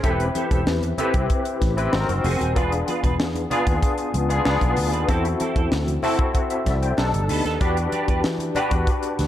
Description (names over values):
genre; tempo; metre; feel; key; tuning
polished 1980s jazz-funk pop; 95 BPM; 4/4; straight; unclear; A4 = 440 Hz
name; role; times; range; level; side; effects
barky tine electric piano; accompaniment; 0.0-9.3 s; B3 to B5; -24 LUFS; left 3 dB; overdrive, fast tremolo, ensemble chorus
clean electric guitar; riff; 0.0-9.1 s; B3 to B4; -29 LUFS; right 4 dB; ensemble chorus
sustaining fretless electric bass; bass; 0.0-9.3 s; D#1 to E3; -24 LUFS; equal; none
tight funk drum kit; drums; 0.0-9.3 s; hi-hat, kick drum, snare drum; -24 LUFS; equal; none
congas; percussion; 0.0-9.3 s; none; -37 LUFS; right 2 dB; none
room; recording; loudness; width
light reverb, small room ambience; dark, warm production; -19 LUFS; side -12 dB against mid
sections
0.0-9.3 A section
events
tine electric piano fill 6.3-7.6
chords
0.0 Am7/E; 1.9 G#7; 2.6 C#7b9/E; 4.5 C#7b9; 5.1 F#m7b5; 7.0 B7alt; 7.6 Em7